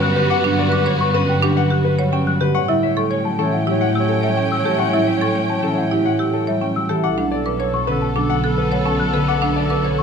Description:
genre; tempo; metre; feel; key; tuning
classical, minimalist pattern music; 107 BPM; 4/4; straight; unclear; A4 = 436 Hz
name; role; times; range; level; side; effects
warm concert grand piano; melody; 0.0-10.0 s; G4 to A5; -25 LUFS; left 10 dB; none
concert harp; accompaniment; 0.0-10.0 s; D3 to C#4; -21 LUFS; left 2 dB; none
rich studio violin section; sustained chords; 0.0-10.0 s; B3 to G5; -26 LUFS; left 3 dB; none
marimba with medium hard mallets; arpeggios; 0.0-10.0 s; C#4 to C#5; -23 LUFS; right 8 dB; none
small celesta; arpeggios; 0.0-10.0 s; E5 to F#6; -26 LUFS; left 5 dB; none
rich studio double bass section; bass; 0.0-10.0 s; B1 to A2; -24 LUFS; right 3 dB; none
dark clarinet; second line; 0.1-10.0 s; A4 to C#5; -26 LUFS; right 3 dB; none
room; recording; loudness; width
moderate recital hall reverb, RT60 1.4 s; close, detailed microphones; -16 LUFS; side -6 dB against mid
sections
0.0-10.0 A section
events
none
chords
0.0 Gmaj7; 2.6 A7; 7.0 Bm7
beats
| 0.31 0.87 1.43 1.99 | 2.55 3.11 3.67 4.23 | 4.79 5.36 5.92 6.48 | 7.04 7.60 8.16 8.72 | 9.28 9.84

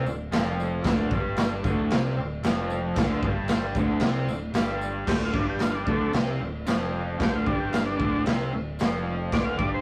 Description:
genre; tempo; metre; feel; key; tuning
garage rock duo or trio; 113 BPM; 4/4; straight; D minor; A4 = 440 Hz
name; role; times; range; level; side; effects
overdriven combo organ; sustained chords; 0.0-9.7 s; F4 to F5; -41 LUFS; equal; none
raw garage guitar; riff; 0.0-9.8 s; D2 to C4; -31 LUFS; equal; overdrive
growling picked electric bass; bass; 0.0-9.8 s; D1 to C2; -35 LUFS; equal; overdrive
tambourine; percussion; 0.1-8.9 s; none; -52 LUFS; equal; none
raw garage drum kit; drums; 0.3-9.7 s; crash cymbal, kick drum, snare drum; -29 LUFS; equal; none
combo organ; melody; 5.1-9.8 s; A3 to F5; -32 LUFS; equal; none
room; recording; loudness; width
wet booth ambience, RT60 0.2 s; rough rehearsal-room recording, warm saturation; -26 LUFS; mono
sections
0.0-5.1 A section; 5.1-9.8 B section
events
transistor combo organ solo 5.1-9.8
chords
0.0 Dm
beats
0.32 | 0.85 1.38 1.91 2.43 | 2.96 3.49 4.02 4.55 | 5.08 5.61 6.14 6.67 | 7.20 7.73 8.26 8.79 | 9.32

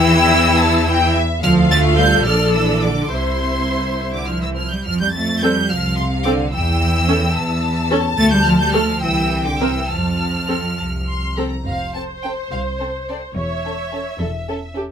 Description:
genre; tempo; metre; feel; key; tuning
quick classical-period movement for string orchestra; 67-74 BPM (dotted quarters); 6/8; rubato; F major; A4 = 442 Hz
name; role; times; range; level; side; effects
rich studio violin section; melody; 0.0-14.7 s; C5 to A6; -22 LUFS; right 1 dB; none
rich studio violin section; second line; 0.0-14.8 s; C4 to C6; -23 LUFS; left 4 dB; none
rich studio viola section; accompaniment; 0.0-14.8 s; A3 to C#5; -21 LUFS; equal; none
rich studio cello section; bass; 0.0-14.9 s; C2 to A3; -21 LUFS; right 1 dB; none
rich studio double bass section; bass; 0.0-14.9 s; E1 to F2; -21 LUFS; right 1 dB; none
room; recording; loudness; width
light reverb; close, detailed microphones; -15 LUFS; side -8 dB against mid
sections
0.0-11.7 A section; 11.7-14.9 B section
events
none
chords
0.0 Em; 1.4 Dm; 2.3 Bbmaj7#11; 3.1 C; 4.9 F; 6.5 A7/E; 8.2 Dm; 9.0 C7; 9.9 F; 13.4 A/E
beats
0.59 | 1.43 2.27 | 3.12 3.99 | 4.85 5.70 | 6.54 7.36 | 8.18 9.02 | 9.90 10.78 | 11.66 12.52 | 13.36 14.20

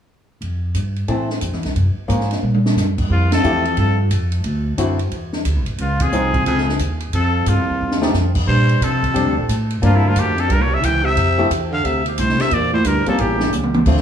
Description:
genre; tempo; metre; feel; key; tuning
jazz, small-group swing and bop; 178 BPM; 4/4; swing 64% on 8ths; F major; A4 = 441 Hz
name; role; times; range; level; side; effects
upright bass; bass; 0.4-14.0 s; A1 to C3; -19 LUFS; equal; none
compact cocktail drum kit; drums; 0.4-14.0 s; crash cymbal, hi-hat, kick drum, ride cymbal, snare drum, toms; -23 LUFS; equal; none
archtop guitar, miked and amplified; accompaniment; 1.1-14.0 s; D3 to G4; -22 LUFS; left 3 dB; none
trumpet with straight mute; melody; 3.1-13.5 s; E4 to G5; -21 LUFS; left 1 dB; tape echo
warm baritone saxophone; second line; 3.1-13.5 s; C2 to E3; -22 LUFS; right 2 dB; none
room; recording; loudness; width
moderate plate reverb, RT60 1.1 s, small room ambience; dreamy mix soaked in reverb; -15 LUFS; side -9 dB against mid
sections
0.4-3.1 A section; 3.1-13.9 B section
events
drum fill 2.4-2.8, 7.8-8.1, 13.5-13.9; band accent 3.3, 6.0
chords
0.4 Fmaj7; 1.8 Gbmaj7; 3.1 Fmaj9; 4.5 D9; 5.8 Dbmaj9; 7.1 F9; 8.5 Bb69; 9.8 Gm7; 10.5 C7b9; 11.2 Fmaj7(no3); 12.5 Em7b5; 13.2 A7b9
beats
| 0.42 0.75 1.09 1.43 | 1.76 2.10 2.43 2.77 | 3.11 3.44 3.78 4.11 | 4.45 4.79 5.12 5.46 | 5.79 6.13 6.47 6.80 | 7.14 7.47 7.81 8.15 | 8.48 8.82 9.15 9.49 | 9.83 10.16 10.50 10.83 | 11.17 11.51 11.84 12.18 | 12.52 12.85 13.19 13.52 | 13.86

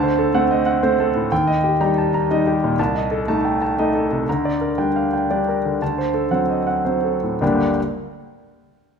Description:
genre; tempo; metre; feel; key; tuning
classical, piano waltz; 101-129 BPM; 3/4; rubato; G minor; A4 = 440 Hz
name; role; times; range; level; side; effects
clear grand piano; solo; 0.0-7.8 s; G1 to Bb5; -17 LUFS; equal; none
room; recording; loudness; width
wet recital hall reverb, RT60 1.6 s; minimal, uncompressed stereo recording; -17 LUFS; side -6 dB against mid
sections
0.0-7.4 A section; 7.4-9.0 B section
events
slowing down 3.5-7.4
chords
0.0 D7; 1.3 Eb; 2.8 Adim/C; 4.3 Gm/D; 5.8 D7; 7.4 Gm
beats
0.34 0.82 | 1.31 1.80 2.30 | 2.78 3.27 3.77 | 4.27 4.78 5.30 | 5.81 6.30 6.84 | 7.41

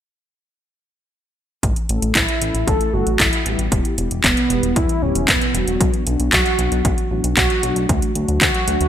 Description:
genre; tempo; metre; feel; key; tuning
italo disco; 115 BPM; 4/4; straight; unclear; A4 = 440 Hz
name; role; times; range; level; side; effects
chorused synth bass; bass; 1.6-8.9 s; D1 to D2; -22 LUFS; equal; none
electronic kick drum; drums; 1.6-8.5 s; none; -21 LUFS; equal; overdrive
house drum kit; drums; 1.6-8.9 s; handclaps, hi-hat; -19 LUFS; equal; overdrive
mellow synth brass; stabs; 1.9-8.9 s; F#3 to A4; -25 LUFS; left 2 dB; chorus
wide unison lead; melody; 2.2-8.9 s; B3 to A4; -22 LUFS; right 1 dB; ping-pong delay
room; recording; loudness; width
moderate lush hall reverb, RT60 2.0 s; bright 1980s-style digital production; -16 LUFS; side -10 dB against mid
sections
1.6-8.9 A section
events
none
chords
1.6 A; 3.7 Em; 5.8 Bm; 7.9 D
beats
| 1.63 2.15 2.68 3.20 | 3.72 4.24 4.76 5.28 | 5.81 6.33 6.85 7.37 | 7.89 8.41

